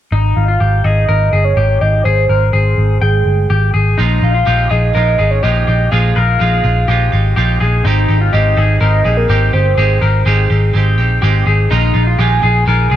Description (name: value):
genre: indie pop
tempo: 124 BPM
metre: 4/4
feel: straight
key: Ab major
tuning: A4 = 440 Hz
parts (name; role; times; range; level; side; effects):
- electric guitar through a small old amp; arpeggios; 0.1-13.0 s; Eb4 to G5; -18 LUFS; left 5 dB; spring reverb
- vintage muted picked electric bass; bass; 0.1-13.0 s; G1 to C2; -12 LUFS; equal; none
- soft octave-layered synth lead; melody; 0.4-13.0 s; Ab4 to Ab5; -18 LUFS; right 1 dB; chorus, phaser
- clean electric guitar; accompaniment; 4.0-13.0 s; Bb2 to G4; -19 LUFS; right 7 dB; none
room: little or no reverb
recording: none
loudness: -10 LUFS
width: side -11 dB against mid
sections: 0.1-7.8 A section; 7.8-13.0 B section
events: none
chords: 0.1 Abmaj7; 4.0 Bb7sus4; 7.8 Abmaj7; 11.7 Bb7sus4